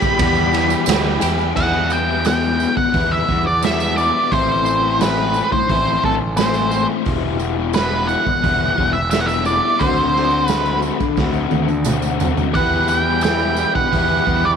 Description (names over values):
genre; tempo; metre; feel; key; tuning
psychedelic rock; 88 BPM; 4/4; straight; E minor; A4 = 440 Hz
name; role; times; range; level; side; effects
octave-fuzz lead guitar; melody; 0.0-14.5 s; A4 to B5; -19 LUFS; right 2 dB; distortion, tape echo
combo organ; sustained chords; 0.0-1.5, 12.6-14.6 s; E3 to B5; -23 LUFS; right 16 dB; none
raw garage guitar; riff; 0.0-14.5 s; E2 to G4; -21 LUFS; left 16 dB; overdrive, rotary speaker
raw garage drum kit; drums; 0.0-14.4 s; crash cymbal, hi-hat, kick drum, ride cymbal, snare drum, toms; -22 LUFS; right 4 dB; none
tambourine; percussion; 0.0-13.7 s; none; -34 LUFS; right 18 dB; none
fuzz fingered electric bass; bass; 0.2-14.6 s; E1 to E2; -22 LUFS; equal; overdrive
room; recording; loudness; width
studio ambience; 1960s-style stereo with parts hard left and right; -15 LUFS; side -7 dB against mid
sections
0.0-1.6 A section; 1.6-14.6 B section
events
lead electric guitar solo 0.0-1.6; drum fill 11.2-12.6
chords
0.0 Em; 4.3 Am; 7.1 Emadd9; 9.8 D7; 12.6 Emadd9